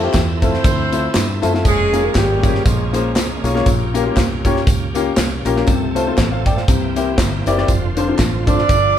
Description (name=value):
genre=uptempo gospel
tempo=119 BPM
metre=4/4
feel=swing 56% on 8ths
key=F major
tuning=A4 = 441 Hz
part: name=clear upright piano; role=accompaniment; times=0.0-8.6 s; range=Bb2 to G5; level=-20 LUFS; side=left 4 dB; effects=none
part: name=bright tonewheel organ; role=sustained chords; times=0.0-9.0 s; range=D3 to A4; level=-28 LUFS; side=right 3 dB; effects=slow rotary speaker, chorus vibrato
part: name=fingered electric bass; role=bass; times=0.0-9.0 s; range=F1 to G2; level=-21 LUFS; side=equal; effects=none
part: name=modern studio drum kit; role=drums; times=0.1-8.8 s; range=hi-hat, kick drum, snare drum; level=-18 LUFS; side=right 1 dB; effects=none
part: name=handclaps and tambourine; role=percussion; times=0.1-8.8 s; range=none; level=-31 LUFS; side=left 1 dB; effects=none
part: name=mellow horn section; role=melody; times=0.4-3.6, 8.5-9.0 s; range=F3 to D5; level=-19 LUFS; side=right 2 dB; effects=none
room=moderate stone room reverb, RT60 1.4 s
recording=band playing live in one room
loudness=-14 LUFS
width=side -10 dB against mid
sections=0.0-9.0 A section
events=none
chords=0.0 Fmaj7; 1.6 Db6/F; 3.7 Bbm6; 5.7 F/C; 6.7 C7; 7.7 F6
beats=0.14 0.64 1.15 | 1.65 2.15 2.65 3.16 | 3.66 4.16 4.67 5.17 | 5.67 6.17 6.68 7.18 | 7.68 8.19 8.69